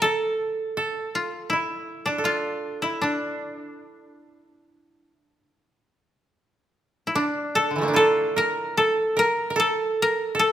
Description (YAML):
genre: japanese traditional, Japanese chamber music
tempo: 68-81 BPM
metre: 4/4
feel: rubato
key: D hirajoshi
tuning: A4 = 440 Hz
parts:
  - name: koto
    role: melody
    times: 0.0-10.5 s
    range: D4 to Bb4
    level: -24 LUFS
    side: left 2 dB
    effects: none
  - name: koto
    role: second line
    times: 0.0-10.5 s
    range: D3 to Bb4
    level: -24 LUFS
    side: right 3 dB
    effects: none
room: light reverb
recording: none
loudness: -21 LUFS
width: side -11 dB against mid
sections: 0.0-6.3 A section; 6.3-10.5 B section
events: none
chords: none